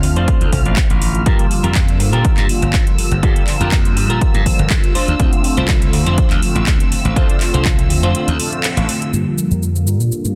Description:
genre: filtered disco house.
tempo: 122 BPM.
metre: 4/4.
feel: swing 53% on 16ths.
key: G dorian.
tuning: A4 = 440 Hz.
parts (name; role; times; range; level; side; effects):
mellow synth brass; accompaniment; 0.0-10.3 s; D3 to F4; -24 LUFS; equal; chorus, phaser, sidechain pumping, low-pass filter.
clear symphonic string section; sustained chords; 0.0-10.3 s; E6 to F6; -30 LUFS; equal; vintage 12-bit sampler grit, sidechain pumping, low-pass filter.
semi-hollow electric guitar; riff; 0.0-10.1 s; D4 to C5; -27 LUFS; equal; ensemble chorus, sidechain pumping, low-pass filter.
glassy slap bass; bass; 0.0-10.3 s; G1 to Bb2; -20 LUFS; equal; tube saturation, sidechain pumping, low-pass filter.
house drum kit; drums; 0.0-10.3 s; cabasa, handclaps, hi-hat; -25 LUFS; equal; overdrive, sidechain pumping on hats, sidechain pumping on cymbals, sidechain pumping on perc.
electronic kick drum; drums; 0.3-7.8 s; none; -18 LUFS; equal; overdrive.
room: little or no reverb.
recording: dense, heavily limited modern master.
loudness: -15 LUFS.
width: mono.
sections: 0.0-9.1 A section; 9.1-10.3 B section.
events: break 8.1-9.1; band accent 8.6; filter sweep 9.1-10.3.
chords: 0.0 Dm7; 1.3 Gm7; 5.0 Dm7; 9.1 Gm7.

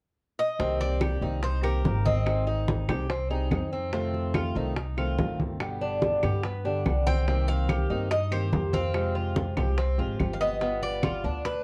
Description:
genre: latin, Cuban son and guajira.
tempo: 144 BPM.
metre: 4/4.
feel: straight.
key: C minor.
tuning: A4 = 441 Hz.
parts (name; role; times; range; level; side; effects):
Cuban tres; melody; 0.4-3.7, 7.1-11.6 s; Bb4 to G5; -33 LUFS; equal; none.
fingerpicked plugged-in swing-style acoustic guitar; accompaniment; 0.6-11.5 s; B2 to Ab4; -36 LUFS; equal; none.
Cuban tres; arpeggios; 0.6-11.6 s; B3 to G4; -35 LUFS; equal; none.
upright bass; bass; 0.6-11.6 s; G1 to G2; -31 LUFS; equal; none.
bongos; percussion; 0.6-11.6 s; none; -38 LUFS; equal; none.
congas; percussion; 0.6-11.6 s; none; -34 LUFS; equal; none.
claves; percussion; 1.0-11.2 s; none; -43 LUFS; equal; none.
room: moderate small room reverb, RT60 0.5 s.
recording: worn, warbling old tape, cassette tape, warbly pitch drift.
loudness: -27 LUFS.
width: mono.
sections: 0.6-11.6 A section.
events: none.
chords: 0.0 N.C.; 0.6 Cm7; 2.3 Abmaj7; 3.9 F7; 5.6 G; 7.3 Cm7; 8.9 Fmadd9; 10.6 G7.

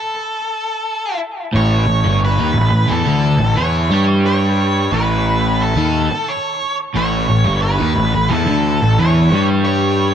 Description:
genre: rock.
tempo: 89 BPM.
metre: 4/4.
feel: straight.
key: A mixolydian.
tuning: A4 = 439 Hz.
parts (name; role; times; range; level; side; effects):
octave-fuzz lead guitar; melody; 0.0-10.1 s; A4 to C#5; -19 LUFS; right 1 dB; distortion, analog delay.
crunchy overdriven guitar; riff; 1.5-10.1 s; G2 to G3; -17 LUFS; equal; phaser, analog delay.
fuzz picked electric bass; bass; 1.6-10.1 s; G1 to G2; -17 LUFS; equal; overdrive.
room: small room ambience.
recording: echo-heavy mix.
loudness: -14 LUFS.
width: side -9 dB against mid.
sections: 0.0-1.5 A section; 1.5-10.1 B section.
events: stop 0.0-1.5.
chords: 0.0 N.C.; 1.5 A.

